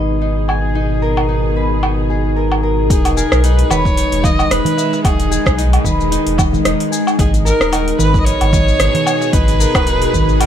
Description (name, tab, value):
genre	organic downtempo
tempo	112 BPM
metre	4/4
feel	swing 55% on 16ths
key	unclear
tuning	A4 = 440 Hz
part	bowed-like drone	sustained chords	0.0-10.5 s	Cb3 to Ab4	-22 LUFS	left 1 dB	built-in reverb, sidechain pumping
part	concert harp	arpeggios	0.0-10.5 s	Eb4 to Ab5	-19 LUFS	left 1 dB	ping-pong delay
part	warm sub bass	bass	0.0-10.5 s	Eb1 to B1	-17 LUFS	equal	none
part	afro-pop drum kit	drums	0.5-10.5 s	hi-hat, rim click, shaker, woodblock	-20 LUFS	right 1 dB	overdrive
part	clear kamancheh	melody	2.9-10.5 s	G#4 to D#5	-21 LUFS	equal	digital delay
part	electronic kick drum	drums	2.9-10.3 s	none	-17 LUFS	equal	overdrive
part	darbuka	percussion	3.7-10.3 s	none	-22 LUFS	right 4 dB	none
room	light reverb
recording	none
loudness	-12 LUFS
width	side -9 dB against mid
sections	0.0-2.9 A section; 2.9-10.5 B section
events	none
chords	0.0 Abmadd9; 2.9 Emaj7; 7.2 Abmadd9